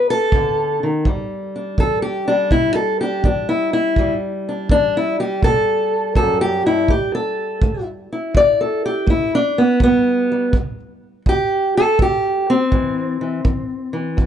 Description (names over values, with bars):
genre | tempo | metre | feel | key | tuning
acoustic country blues, solo or duo | 82 BPM | 4/4 | swing 67% on 8ths | E minor | A4 = 436 Hz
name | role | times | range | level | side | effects
fingerpicked steel-string acoustic guitar | melody | 0.0-14.3 s | E2 to D5 | -16 LUFS | equal | plate reverb
kick drum | drums | 0.3-14.3 s | none | -19 LUFS | right 1 dB | none
room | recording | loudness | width
moderate small room reverb, RT60 0.5 s | nothing above 11.0 kHz | -16 LUFS | side -9 dB against mid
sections
0.0-1.1 A section; 1.1-14.3 A section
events
steel-string acoustic guitar solo 0.0-1.1, 1.1-14.3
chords
0.0 B7#9; 1.1 Em7; 6.9 A5; 9.8 Em; 12.7 Am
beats
0.32 | 1.05 1.78 2.51 3.24 | 3.97 4.70 5.43 6.16 | 6.89 7.62 8.35 9.08 | 9.81 10.54 11.27 11.99 | 12.72 13.45 14.18